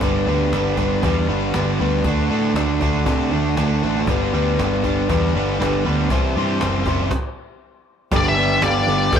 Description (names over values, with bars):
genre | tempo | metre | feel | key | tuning
classic rock | 118 BPM | 4/4 | straight | G major | A4 = 441 Hz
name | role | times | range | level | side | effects
overdriven electric guitar | riff | 0.0-9.2 s | G2 to C5 | -22 LUFS | left 5 dB | spring reverb
overdriven electric guitar | riff | 0.0-9.2 s | G2 to D4 | -23 LUFS | right 8 dB | none
fuzz picked electric bass | bass | 0.0-9.2 s | F1 to C3 | -22 LUFS | right 1 dB | overdrive
cajon | drums | 0.0-9.2 s | none | -26 LUFS | equal | none
overdriven reed electric piano | accompaniment | 8.1-9.2 s | G4 to F5 | -27 LUFS | right 5 dB | fast tremolo
cowbell | percussion | 8.1-9.2 s | none | -32 LUFS | left 4 dB | none
octave-fuzz lead guitar | melody | 8.2-9.2 s | D5 to G5 | -18 LUFS | left 2 dB | distortion
room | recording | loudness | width
moderate studio reverb, RT60 0.5 s | band playing live in one room | -17 LUFS | side -8 dB against mid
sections
0.0-8.1 A section; 8.1-9.2 B section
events
stop 7.1-8.1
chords
0.0 G; 2.1 D; 4.1 G; 6.1 C; 8.1 G